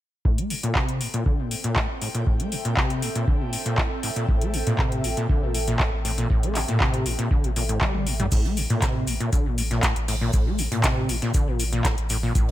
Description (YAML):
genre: acid house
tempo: 119 BPM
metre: 4/4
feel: straight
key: A phrygian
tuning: A4 = 440 Hz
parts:
  - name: overdriven acid bass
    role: riff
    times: 0.3-12.5 s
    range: A2 to A3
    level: -27 LUFS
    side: left 1 dB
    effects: lush chorus, ping-pong delay
  - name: electronic kick drum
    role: drums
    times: 0.3-12.5 s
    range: none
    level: -23 LUFS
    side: equal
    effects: none
  - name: airy breathy pad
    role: texture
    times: 1.1-8.3 s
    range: C4 to G5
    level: -34 LUFS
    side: right 1 dB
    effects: chorus, phaser, sidechain pumping
  - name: electro analog drum machine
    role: drums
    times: 0.4-12.5 s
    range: crash cymbal, handclaps, hi-hat, toms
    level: -27 LUFS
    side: left 1 dB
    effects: none
  - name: warm sub bass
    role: bass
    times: 4.3-12.5 s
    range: A1 to A2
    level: -28 LUFS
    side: equal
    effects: sidechain pumping
  - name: open jazz drum kit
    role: drums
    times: 8.3-12.5 s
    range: hi-hat, shaker, snare drum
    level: -36 LUFS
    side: right 1 dB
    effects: high-pass filter on hats, high-pass filter on snare, high-pass filter on perc, high-pass filter on room
room: little or no reverb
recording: none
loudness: -21 LUFS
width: side -14 dB against mid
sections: 0.3-8.3 A section; 8.3-12.5 B section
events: fade-in on analog synth pad 0.3-8.3; filter sweep on acid bass 0.3-8.3, 8.3-12.5; drum fill 7.8-8.3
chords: 0.3 Am7; 8.3 Am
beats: | 0.25 0.76 1.26 1.76 | 2.27 2.77 3.28 3.78 | 4.28 4.79 5.29 5.80 | 6.30 6.81 7.31 7.81 | 8.32 8.82 9.33 9.83 | 10.34 10.84 11.34 11.85 | 12.35